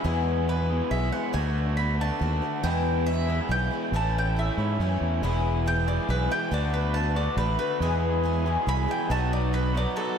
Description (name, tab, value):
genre	folk rock and heartland rock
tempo	139 BPM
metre	3/4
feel	straight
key	E major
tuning	A4 = 440 Hz
part	picked twelve-string acoustic guitar	accompaniment	0.0-10.2 s	E2 to G#4	-31 LUFS	left 6 dB	none
part	raw garage guitar	riff	0.0-10.2 s	E2 to G#4	-31 LUFS	right 2 dB	overdrive
part	fingered electric bass	bass	0.0-9.9 s	E1 to G#2	-26 LUFS	equal	none
part	mandolin	melody	0.5-10.2 s	A4 to B5	-31 LUFS	right 1 dB	analog delay
part	mandolin	second line	2.6-3.4 s	E5 to G5	-35 LUFS	right 2 dB	none
part	accordion	sustained chords	5.2-10.2 s	D4 to B4	-38 LUFS	right 1 dB	stereo widening
room	moderate lush hall reverb, RT60 1.7 s, studio reverb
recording	dreamy mix soaked in reverb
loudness	-23 LUFS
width	side -7 dB against mid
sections	0.0-10.2 A section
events	mandolin solo 0.0-10.2; break 10.0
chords	0.0 E; 1.3 D6; 2.6 E; 3.9 Aadd9; 5.2 E; 6.5 D6; 7.8 E; 9.1 B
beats	| 0.05 0.48 0.91 | 1.34 1.77 2.21 | 2.64 3.07 3.50 | 3.93 4.36 4.79 | 5.22 5.66 6.08 | 6.52 6.95 7.38 | 7.81 8.24 8.67 | 9.10 9.53 9.96